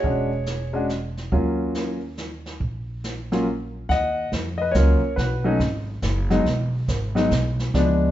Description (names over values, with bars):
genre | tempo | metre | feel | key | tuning
jazz piano trio | 140 BPM | 3/4 | swing 65% on 8ths | Eb minor | A4 = 440 Hz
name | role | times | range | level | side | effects
warm concert grand piano | melody | 0.0-8.1 s | F3 to Gb5 | -22 LUFS | left 1 dB | none
upright bass | bass | 0.0-8.1 s | E1 to F2 | -25 LUFS | equal | none
jazz brush drum kit | drums | 0.0-8.1 s | brushed snare drum, hi-hat, kick drum, snare drum | -30 LUFS | right 1 dB | none
room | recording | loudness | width
wet large studio reverb, RT60 1.1 s | heard from further back in the room, nothing above 7.7 kHz | -21 LUFS | side -13 dB against mid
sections
0.0-3.9 A section; 3.9-8.1 B section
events
none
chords
0.0 E13; 1.3 Ebm7; 3.9 Ebm9; 5.2 B; 6.5 E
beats
| 0.04 0.47 0.90 | 1.32 1.75 2.18 | 2.60 3.03 3.46 | 3.89 4.31 4.74 | 5.17 5.60 6.02 | 6.45 6.88 7.31 | 7.74